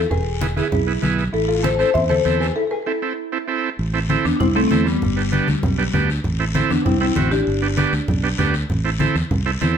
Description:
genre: latin, cumbia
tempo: 196 BPM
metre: 4/4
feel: straight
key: A harmonic minor, A minor from 3.8 s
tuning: A4 = 437 Hz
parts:
  - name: buzzing marimba with medium mallets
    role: melody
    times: 0.0-8.5 s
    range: B3 to E5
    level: -22 LUFS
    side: left 2 dB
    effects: slapback echo
  - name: fingered electric bass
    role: bass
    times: 0.0-9.8 s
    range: E1 to E2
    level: -22 LUFS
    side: right 1 dB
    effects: none
  - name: mellow electric guitar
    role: second line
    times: 0.1-8.5 s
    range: G3 to C5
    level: -25 LUFS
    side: left 2 dB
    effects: slapback echo
  - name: congas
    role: percussion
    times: 0.1-9.8 s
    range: none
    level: -24 LUFS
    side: left 1 dB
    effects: none
  - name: guiro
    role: percussion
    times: 0.1-9.8 s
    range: none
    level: -33 LUFS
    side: left 5 dB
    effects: none
  - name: combo organ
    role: accompaniment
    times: 0.4-9.8 s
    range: B3 to A4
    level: -23 LUFS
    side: right 7 dB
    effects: none
room: moderate studio reverb, RT60 0.8 s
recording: none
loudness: -17 LUFS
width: side -8 dB against mid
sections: 0.0-3.8 A section; 3.8-9.8 B section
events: break 2.6-3.8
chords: 0.1 E; 1.3 Am; 5.0 G; 6.2 Am; 7.5 G; 8.7 Am

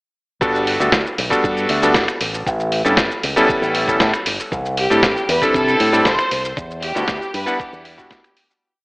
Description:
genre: nu-disco, nu disco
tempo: 117 BPM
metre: 4/4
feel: straight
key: G major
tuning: A4 = 438 Hz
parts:
  - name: bright electric grand piano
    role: accompaniment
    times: 0.4-8.2 s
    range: G3 to F#5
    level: -18 LUFS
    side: equal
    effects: sidechain pumping, analog delay
  - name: fingered electric bass with an envelope filter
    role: bass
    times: 0.4-8.1 s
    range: G1 to C3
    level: -23 LUFS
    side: equal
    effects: none
  - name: dusty soul sampler-style drum kit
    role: drums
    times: 0.4-8.6 s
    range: finger snaps, hi-hat, shaker, snare drum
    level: -20 LUFS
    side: equal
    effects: none
  - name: electronic kick drum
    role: drums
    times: 0.4-8.2 s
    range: none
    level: -27 LUFS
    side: equal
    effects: none
  - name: warm studio violin section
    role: melody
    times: 4.8-8.4 s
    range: G4 to C5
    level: -21 LUFS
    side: equal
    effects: tape echo
room: wet plate reverb, RT60 1.2 s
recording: dreamy mix soaked in reverb, AM radio sound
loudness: -15 LUFS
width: side -30 dB against mid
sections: 0.4-8.6 drop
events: drop 0.4-8.6; fade-out 5.9-8.6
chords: 0.4 Gmaj9; 2.2 A9; 4.5 C6; 6.6 Em9

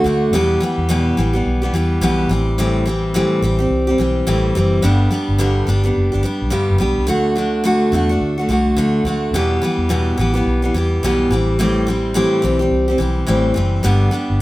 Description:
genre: acoustic pop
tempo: 107 BPM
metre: 4/4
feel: swing 60% on 16ths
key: unclear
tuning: A4 = 437 Hz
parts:
  - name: picked steel-string acoustic guitar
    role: accompaniment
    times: 0.0-14.4 s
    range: E2 to G4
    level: -16 LUFS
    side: equal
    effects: none
  - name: vintage muted fingered electric bass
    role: bass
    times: 0.0-14.4 s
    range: F#1 to E2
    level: -19 LUFS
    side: equal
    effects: none
room: moderate stone room reverb, RT60 0.9 s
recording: band playing live in one room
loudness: -14 LUFS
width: side -17 dB against mid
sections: 0.0-14.4 A section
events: none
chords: 0.3 Em; 2.3 Am7; 4.8 G; 7.1 D; 9.3 Em; 11.3 Am7; 13.8 G

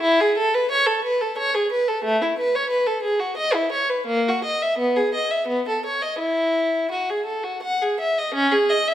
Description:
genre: classical, baroque-style suite movement for unaccompanied violin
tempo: 82-90 BPM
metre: 3/4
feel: rubato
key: E major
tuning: A4 = 440 Hz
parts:
  - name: rich violin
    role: solo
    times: 0.0-8.9 s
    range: A3 to F#5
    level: -19 LUFS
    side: equal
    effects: none
room: moderate recital hall reverb, RT60 1.4 s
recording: none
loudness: -19 LUFS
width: side -11 dB against mid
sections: 0.0-8.3 A section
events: none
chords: none

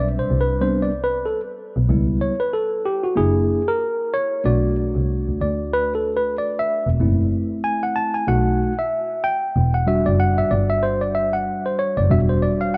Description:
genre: hip hop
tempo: 94 BPM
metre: 4/4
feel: swing 58% on 16ths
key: E minor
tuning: A4 = 437 Hz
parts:
  - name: mellow tine electric piano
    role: accompaniment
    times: 0.0-12.8 s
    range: G3 to A5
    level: -22 LUFS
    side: equal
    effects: none
  - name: dark double bass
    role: bass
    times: 0.2-12.4 s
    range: E1 to D2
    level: -23 LUFS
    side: equal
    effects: none
room: moderate plate reverb, RT60 3.5 s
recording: dark, warm production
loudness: -21 LUFS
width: mono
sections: 0.0-12.8 A section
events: tine electric piano solo 0.0-12.8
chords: 0.0 Am11 (rootless); 1.9 C#m7b5; 3.2 F#7b13; 4.4 Bm7; 7.0 F#m7b5; 8.3 B7; 9.6 Em9

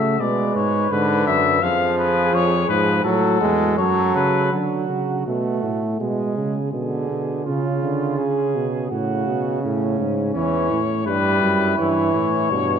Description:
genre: classical, imitative canzona for brass ensemble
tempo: 83 BPM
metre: 4/4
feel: straight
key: F# minor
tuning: A4 = 440 Hz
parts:
  - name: warm trumpet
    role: melody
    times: 0.0-4.5, 10.3-12.8 s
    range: A4 to E#5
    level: -22 LUFS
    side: left 9 dB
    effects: none
  - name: mellow flugelhorn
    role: second line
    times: 0.0-12.8 s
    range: C#4 to B4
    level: -26 LUFS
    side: right 4 dB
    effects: none
  - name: warm trombone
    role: accompaniment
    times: 0.0-12.8 s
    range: B2 to A3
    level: -22 LUFS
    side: right 2 dB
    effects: none
  - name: warm bass trombone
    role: bass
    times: 0.0-12.8 s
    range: E2 to D3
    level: -24 LUFS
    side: right 1 dB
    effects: none
room: moderate concert hall reverb, RT60 2.0 s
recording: dark, warm production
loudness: -18 LUFS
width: side -7 dB against mid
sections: 0.0-4.5 A section; 4.5-12.8 B section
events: none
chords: 0.2 G#dim; 1.6 C#/E#; 3.0 F#m; 4.5 D; 6.0 G#dim/B; 7.5 C#; 8.9 F#m/A; 10.3 C#dim/E

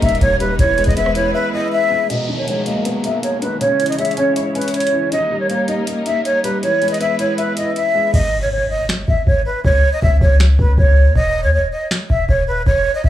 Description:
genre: hip hop, trap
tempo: 159 BPM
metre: 4/4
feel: half-time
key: G# harmonic minor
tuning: A4 = 440 Hz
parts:
  - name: breathy jazz flute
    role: melody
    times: 0.0-13.1 s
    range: B4 to E5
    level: -18 LUFS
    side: right 1 dB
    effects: low-pass filter, tape echo
  - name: felt-muted upright piano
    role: accompaniment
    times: 0.0-8.2 s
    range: B2 to E5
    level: -22 LUFS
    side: left 2 dB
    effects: low-pass filter
  - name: muted studio string section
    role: sustained chords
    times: 0.0-8.1 s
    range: B2 to C#5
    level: -24 LUFS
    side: equal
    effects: low-pass filter
  - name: warm 808-style bass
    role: bass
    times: 0.0-1.3, 8.1-13.1 s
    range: D#1 to D#2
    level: -15 LUFS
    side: equal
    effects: none
  - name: booming analog drum machine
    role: drums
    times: 0.0-13.1 s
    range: crash cymbal, finger snaps, hi-hat, kick drum, rim click, snare drum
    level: -20 LUFS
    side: equal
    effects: none
  - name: downlifter and impact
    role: sound effects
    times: 2.1-5.1, 8.1-9.6 s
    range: none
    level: -30 LUFS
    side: equal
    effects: none
room: studio reverb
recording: dry, gritty hardware recording, small room ambience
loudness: -14 LUFS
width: side -12 dB against mid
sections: 0.0-2.1 A section; 2.1-8.1 B section; 8.1-13.1 C section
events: break 1.3-2.1; filter sweep 2.1-8.1; hi-hats muted 8.1-13.1; impact 8.1-9.6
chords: 0.0 D#; 0.6 E; 2.1 G#madd9; 3.6 C#m; 5.1 D#; 6.6 E; 8.1 G#sus4; 9.6 N.C.; 11.2 C#sus2/D#

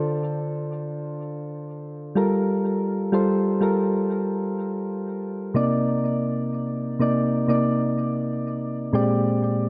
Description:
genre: R&B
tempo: 62 BPM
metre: 4/4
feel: swing 58% on 16ths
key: G minor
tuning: A4 = 440 Hz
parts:
  - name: soft electric-piano-like synth keys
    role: solo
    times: 0.0-9.7 s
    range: Bb2 to D5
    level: -24 LUFS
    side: equal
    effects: chorus, delay
room: light reverb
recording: none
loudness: -24 LUFS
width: mono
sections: 0.0-9.7 A section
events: none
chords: 0.0 Dm7; 2.2 Gm9; 5.6 Cm9; 8.9 Bb13

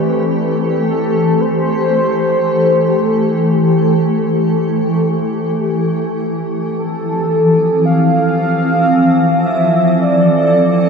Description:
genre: ambient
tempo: free time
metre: none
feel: none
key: A minor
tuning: A4 = 441 Hz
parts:
  - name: warm velvety synth lead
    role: melody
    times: 0.0-10.9 s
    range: A4 to F5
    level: -16 LUFS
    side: equal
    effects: chorus, analog delay
  - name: granular cloud pad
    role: sustained chords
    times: 0.0-10.9 s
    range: E3 to A4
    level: -13 LUFS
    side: equal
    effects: built-in reverb
room: wet huge ambient reverb, RT60 7.6 s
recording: dreamy mix soaked in reverb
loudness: -12 LUFS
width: side -5 dB against mid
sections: 0.0-10.9 A section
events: none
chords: 0.0 Am7; 5.7 Fmaj7

